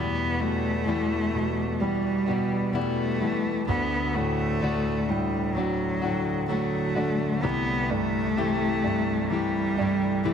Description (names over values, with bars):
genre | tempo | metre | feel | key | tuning
pop ballad | 64 BPM | 4/4 | straight | E minor | A4 = 440 Hz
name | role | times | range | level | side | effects
rich cello | melody | 0.0-10.3 s | E3 to B3 | -27 LUFS | equal | dub echo
warm concert grand piano | accompaniment | 0.0-10.3 s | C2 to G3 | -28 LUFS | right 2 dB | dub echo
fingerpicked plugged-in steel-string acoustic guitar | arpeggios | 0.0-10.3 s | E2 to G4 | -30 LUFS | left 6 dB | dub echo
room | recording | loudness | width
moderate echo chamber reverb, RT60 2.2 s | echo-heavy mix | -24 LUFS | side -7 dB against mid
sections
0.0-10.3 A section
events
none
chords
0.0 Em; 3.7 D; 7.4 C6